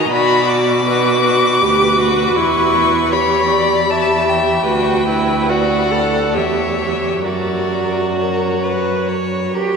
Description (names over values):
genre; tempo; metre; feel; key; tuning
classical, slow romantic movement for string quartet; 65-81 BPM; 3/4; rubato; B minor; A4 = 440 Hz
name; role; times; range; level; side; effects
rich violin; melody; 0.0-9.5 s; C#5 to D6; -18 LUFS; left 4 dB; none
clear violin; second line; 0.0-9.8 s; A#4 to E5; -21 LUFS; left 2 dB; none
rich viola; accompaniment; 0.0-9.8 s; E4 to A4; -18 LUFS; right 2 dB; none
rich cello; bass; 0.0-9.8 s; D2 to G4; -21 LUFS; right 3 dB; none
room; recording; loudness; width
wet cathedral reverb, RT60 6.1 s; minimal, uncompressed stereo recording; -13 LUFS; side -5 dB against mid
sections
0.0-9.8 A section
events
none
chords
0.1 Bm; 2.4 Em; 4.7 Bm/D; 6.3 C#dim/E; 7.2 F#